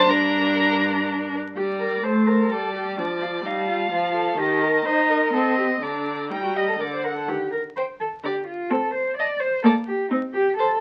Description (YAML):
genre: quick classical-period movement for string quartet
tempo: 126 BPM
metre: 3/4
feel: straight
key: G minor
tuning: A4 = 439 Hz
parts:
  - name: rich violin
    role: melody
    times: 0.0-10.7 s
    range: F#5 to C6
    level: -33 LUFS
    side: equal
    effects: none
  - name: rich violin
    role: second line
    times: 0.0-10.7 s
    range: Bb4 to G5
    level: -27 LUFS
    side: equal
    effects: none
  - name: rich viola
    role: accompaniment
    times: 0.0-10.5 s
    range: D3 to Eb4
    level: -26 LUFS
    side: equal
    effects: none
  - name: rich cello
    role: bass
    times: 0.0-10.8 s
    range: G2 to D5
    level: -28 LUFS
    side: equal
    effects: none
room: moderate studio reverb, RT60 0.7 s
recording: very old 78 rpm record, vinyl crackle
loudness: -23 LUFS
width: mono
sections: 0.0-1.6 A section; 1.6-10.8 A section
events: none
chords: 0.1 Gm; 3.0 Dm/F; 4.4 Cm/Eb; 5.3 Cm; 5.8 Gm/D; 6.8 D; 7.3 Cm/Eb (rootless); 8.2 Bb/D (rootless); 8.7 Am/C; 9.6 Gm/Bb; 10.1 Am7/C